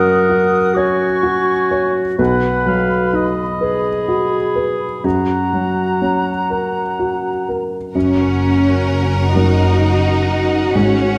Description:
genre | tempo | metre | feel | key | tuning
cinematic, emotional film score for orchestra | 42 BPM (dotted quarters) | 6/8 | rubato | F# major | A4 = 441 Hz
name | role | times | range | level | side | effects
clear clarinet | second line | 0.0-7.5 s | F#4 to B4 | -22 LUFS | equal | none
small flute group | second line | 0.0-7.6 s | A#5 to D#6 | -26 LUFS | equal | none
warm oboe | second line | 0.0-7.6 s | D#5 to G#5 | -27 LUFS | equal | none
warm baby grand piano | accompaniment | 0.0-11.2 s | B1 to C#5 | -21 LUFS | equal | none
warm symphonic violin section | melody | 7.9-11.2 s | F#5 | -31 LUFS | equal | none
warm symphonic double bass section | bass | 7.9-11.2 s | F#1 to G#1 | -20 LUFS | equal | none
clear studio violin section | second line | 8.0-11.2 s | A#4 to C#5 | -29 LUFS | equal | none
warm symphonic viola section | accompaniment | 8.0-11.2 s | F#4 | -24 LUFS | equal | none
rich symphonic cello section | bass | 8.0-11.2 s | C#4 to D#4 | -21 LUFS | equal | none
room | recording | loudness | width
wet scoring stage reverb, RT60 1.9 s | none | -16 LUFS | mono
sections
0.0-8.0 A section; 8.0-11.2 B section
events
none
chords
0.0 F#; 2.2 B; 5.0 F#

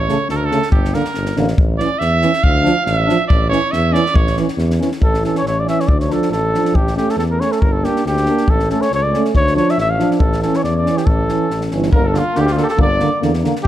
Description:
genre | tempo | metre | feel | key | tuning
balkan folk, Balkan brass band | 140 BPM | 2/4 | straight | A phrygian dominant | A4 = 441 Hz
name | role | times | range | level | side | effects
bright trumpet | second line | 0.0-4.4, 11.9-13.7 s | F4 to F5 | -20 LUFS | right 4 dB | none
warm tuba | bass | 0.0-13.7 s | G1 to E2 | -20 LUFS | left 1 dB | none
mellow euphonium | accompaniment | 0.1-13.5 s | C#3 to Bb3 | -22 LUFS | right 5 dB | none
warm French horn | accompaniment | 0.1-13.7 s | A3 to D4 | -23 LUFS | left 4 dB | none
compact cocktail drum kit | percussion | 0.1-13.7 s | kick drum, snare drum | -18 LUFS | equal | none
mellow trumpet | melody | 5.0-13.7 s | F4 to F5 | -19 LUFS | equal | none
room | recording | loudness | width
light reverb | dark, warm production | -13 LUFS | side -12 dB against mid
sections
0.0-5.0 A section; 5.0-11.9 B section; 11.9-13.7 C section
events
trumpet solo 0.0-5.0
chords
0.0 A; 0.7 Gm; 1.6 A; 2.4 Dm; 3.3 A; 5.9 Dm; 6.7 A; 7.6 Gm; 8.5 A; 9.3 Dm; 10.2 A; 11.9 Gm

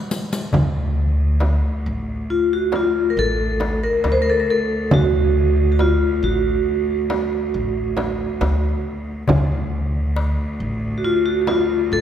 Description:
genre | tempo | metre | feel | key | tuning
Arabic maqam ensemble | 137 BPM (eighths) | 10/8 | straight | D maqam saba | A4 = 439 Hz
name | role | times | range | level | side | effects
darbuka | percussion | 0.1-12.0 s | none | -25 LUFS | left 2 dB | none
riq | percussion | 0.1-0.5 s | none | -27 LUFS | left 2 dB | none
upright bass | bass | 0.5-12.0 s | A1 to D2 | -21 LUFS | equal | none
bright cello | drone | 0.5-12.0 s | D2 | -27 LUFS | equal | none
frame drum | percussion | 0.5-11.7 s | none | -26 LUFS | right 2 dB | none
vibraphone with hard mallets | melody | 2.3-12.0 s | F4 to C5 | -19 LUFS | equal | none
room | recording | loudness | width
wet concert hall reverb, RT60 2.4 s | heard from further back in the room | -17 LUFS | side -9 dB against mid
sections
0.5-12.0 A section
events
drum fill 0.0-0.5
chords
none

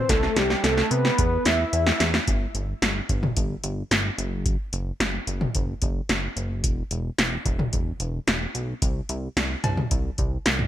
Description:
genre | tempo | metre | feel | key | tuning
synth-pop | 110 BPM | 4/4 | straight | E minor | A4 = 440 Hz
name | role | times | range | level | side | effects
fat analog lead | melody | 0.0-2.0 s | G4 to E5 | -25 LUFS | equal | chorus, digital delay
chorused synth bass | bass | 0.1-10.6 s | E1 to C3 | -27 LUFS | equal | none
electro analog drum machine | drums | 0.1-10.7 s | cowbell, hi-hat, kick drum, snare drum, toms | -24 LUFS | equal | none
room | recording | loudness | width
light reverb | bright 1980s-style digital production | -22 LUFS | side -12 dB against mid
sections
0.0-2.3 A section; 2.3-10.7 B section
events
drum fill 0.1-2.3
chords
0.1 Am9/C; 1.2 E5; 2.3 N.C.; 6.6 E5; 8.8 N.C.

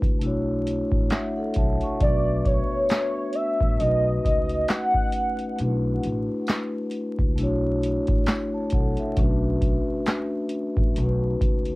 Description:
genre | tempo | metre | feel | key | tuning
lo-fi hip hop | 67 BPM | 4/4 | swing 56% on 16ths | B minor | A4 = 440 Hz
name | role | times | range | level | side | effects
vibraphone with soft mallets | accompaniment | 0.0-11.8 s | A3 to C#6 | -27 LUFS | left 1 dB | cassette tape, low-pass filter, plate reverb
upright bass | bass | 0.0-11.8 s | A1 to C#2 | -27 LUFS | equal | none
booming analog drum machine | drums | 0.0-11.8 s | handclaps, hi-hat, kick drum, snare drum | -24 LUFS | equal | vintage 12-bit sampler grit, cassette tape
warm velvety synth lead | melody | 2.0-5.6 s | C#5 to F#5 | -24 LUFS | equal | chorus, low-pass filter, cassette tape, analog delay, plate reverb
tambourine | percussion | 2.9-10.3 s | none | -49 LUFS | right 3 dB | none
room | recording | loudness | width
moderate booth ambience, RT60 0.2 s | home recording on cassette, vinyl crackle | -21 LUFS | side -21 dB against mid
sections
0.0-11.8 A section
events
vibraphone fill 0.7-2.0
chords
0.0 E9sus4; 3.8 B9; 5.6 E9sus4; 11.0 B9

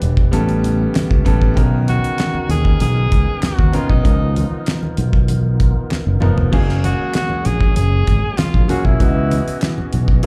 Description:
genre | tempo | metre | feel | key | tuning
lush 1970s-style soul | 97 BPM | 4/4 | straight | F# major | A4 = 439 Hz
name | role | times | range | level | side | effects
bright concert grand piano | accompaniment | 0.0-10.3 s | D#3 to E#5 | -26 LUFS | equal | plate reverb, slapback echo
percussive tonewheel organ | sustained chords | 0.0-10.3 s | C#3 to D#5 | -33 LUFS | equal | none
fingered electric bass | bass | 0.0-10.2 s | E1 to D#2 | -19 LUFS | equal | none
damped 70s drum kit | drums | 0.0-10.3 s | crash cymbal, hi-hat, kick drum, snare drum, toms | -19 LUFS | equal | none
congas | percussion | 0.0-10.3 s | none | -29 LUFS | equal | none
group handclap | percussion | 0.9-9.8 s | none | -36 LUFS | equal | none
breathy tenor saxophone | melody | 1.9-9.8 s | D#4 to G#4 | -26 LUFS | equal | plate reverb, slapback echo
room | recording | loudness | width
little or no reverb | live gig heard through the venue's PA, club reverb | -16 LUFS | mono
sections
0.0-6.5 A section; 6.5-10.3 A section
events
drum fill 5.9-6.5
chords
0.3 A9; 1.6 Bmaj9; 4.0 C#13; 6.5 F#maj9; 9.0 C#m11

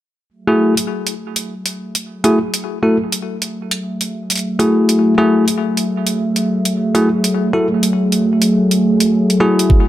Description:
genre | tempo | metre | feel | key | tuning
glitch hop | 102 BPM | 4/4 | swing 63% on 16ths | F# minor | A4 = 444 Hz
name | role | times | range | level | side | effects
warm analog pad | sustained chords | 0.3-9.9 s | F#3 to F#5 | -17 LUFS | equal | chorus, vintage 12-bit sampler grit, sidechain pumping
bell-like tine electric piano | stabs | 0.5-9.8 s | A3 to A4 | -15 LUFS | left 1 dB | vintage 12-bit sampler grit, sidechain pumping, low-pass filter, ping-pong delay
electronic hi-hat | drums | 0.8-9.7 s | none | -19 LUFS | right 1 dB | small room reverb
electronic kick drum | drums | 9.7-9.8 s | none | -10 LUFS | equal | small room reverb
room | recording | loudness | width
moderate plate reverb, RT60 1.6 s | none | -14 LUFS | side -13 dB against mid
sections
0.3-9.9 A section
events
filter sweep on tine electric piano 0.3-9.9; filter sweep on analog synth pad 0.3-9.9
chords
0.3 F#m9

